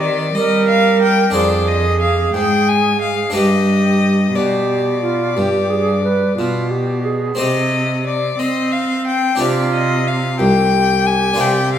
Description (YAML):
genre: classical, baroque-style sonata movement with continuo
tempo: 60 BPM (dotted quarters)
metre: 12/8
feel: straight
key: unclear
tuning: A4 = 440 Hz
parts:
  - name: clear violin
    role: melody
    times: 0.0-11.8 s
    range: D5 to Ab5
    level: -19 LUFS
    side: left 6 dB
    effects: none
  - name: hollow concert flute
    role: second line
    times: 0.0-11.8 s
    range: F4 to B4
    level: -19 LUFS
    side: right 5 dB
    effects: none
  - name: harpsichord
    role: accompaniment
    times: 0.0-11.8 s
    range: C2 to C5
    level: -21 LUFS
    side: left 1 dB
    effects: none
  - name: rich cello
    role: bass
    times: 0.0-11.8 s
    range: C2 to C4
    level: -20 LUFS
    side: right 1 dB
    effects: none
room: wet recital hall reverb, RT60 1.8 s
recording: recorded in a church or concert hall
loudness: -14 LUFS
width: side -9 dB against mid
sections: 0.0-11.8 A section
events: none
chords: 0.0 Cm/Eb; 1.3 Dm7b5/F; 3.4 G; 7.4 Cm; 9.4 G/C